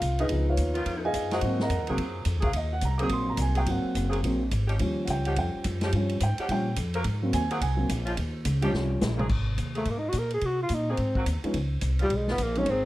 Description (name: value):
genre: jazz, big band swing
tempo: 213 BPM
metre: 4/4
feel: swing 62% on 8ths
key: Ab mixolydian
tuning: A4 = 440 Hz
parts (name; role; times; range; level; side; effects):
- dark concert grand piano; accompaniment; 0.0-9.0, 11.4-12.7 s; F3 to Eb6; -29 LUFS; equal; none
- upright bass; bass; 0.0-12.9 s; Gb1 to C3; -28 LUFS; equal; none
- swinging big-band drum kit; drums; 0.0-12.7 s; crash cymbal, hi-hat, kick drum, ride cymbal, snare drum, toms; -34 LUFS; equal; none
- dark saxophone section; sustained chords; 0.2-12.9 s; Eb3 to Bb4; -35 LUFS; equal; none
- breathy tenor saxophone; melody; 9.8-12.8 s; G3 to Bb4; -27 LUFS; equal; none
room: light reverb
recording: dark, warm production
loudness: -25 LUFS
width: side -16 dB against mid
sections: 0.0-9.3 A section; 9.3-12.9 A section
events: grand piano solo 0.0-9.3; drum fill 8.7-9.3; tenor saxophone solo 9.3-12.9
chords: 0.3 Db9; 1.4 Ab9; 4.8 Eb9; 7.1 Ab9; 8.2 Eb9; 9.3 Ab9; 11.6 Db9